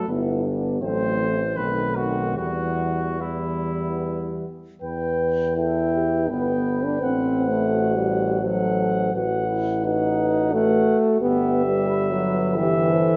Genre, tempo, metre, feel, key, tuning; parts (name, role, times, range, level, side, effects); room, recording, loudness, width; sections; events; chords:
classical, hymn-like piece for brass band; 71-90 BPM; 3/4; rubato; E minor; A4 = 439 Hz
warm cornet; melody; 0.0-13.2 s; E4 to G5; -31 LUFS; equal
warm French horn section; second line; 0.0-13.2 s; B3 to B4; -32 LUFS; equal
warm euphonium; accompaniment; 0.0-13.2 s; G3 to C5; -30 LUFS; equal
warm trombone; accompaniment; 0.0-13.2 s; D#3 to E4; -26 LUFS; equal
clear tuba; bass; 0.1-13.2 s; G1 to E2; -30 LUFS; equal
wet recital hall reverb, RT60 1.4 s; nothing above 7.6 kHz; -23 LUFS; mono
0.0-4.8 A section; 4.8-13.2 A section
0.1 Em/G; 0.8 F#dim/A; 1.6 B7b9; 2.4 Em; 7.0 F#dim/A; 9.1 B7/A; 11.2 Em/G